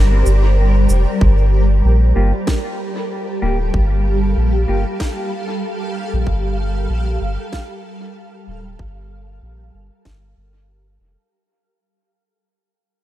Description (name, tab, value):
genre	ambient dub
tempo	95 BPM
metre	4/4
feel	swing 59% on 16ths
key	G minor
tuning	A4 = 438 Hz
part	granular cloud pad	sustained chords	0.0-11.3 s	G3 to F5	-22 LUFS	right 1 dB	built-in reverb, ensemble chorus
part	soft dub sub bass	bass	0.0-11.2 s	D1 to Bb1	-15 LUFS	equal	none
part	electronic cabasa and snare drum	drums	0.3-10.2 s	none	-31 LUFS	equal	overdrive, dub echo
part	electronic kick drum	drums	1.2-10.2 s	none	-19 LUFS	equal	overdrive
part	mellow electric guitar	stabs	2.2-4.8 s	Bb3 to G4	-29 LUFS	left 2 dB	analog chorus, dub echo
room	light reverb, digital ambience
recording	none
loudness	-15 LUFS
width	side -14 dB against mid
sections	0.0-1.2 A section; 1.2-11.3 B section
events	fade-out 1.2-11.3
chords	0.0 Bbadd9; 1.2 Gm7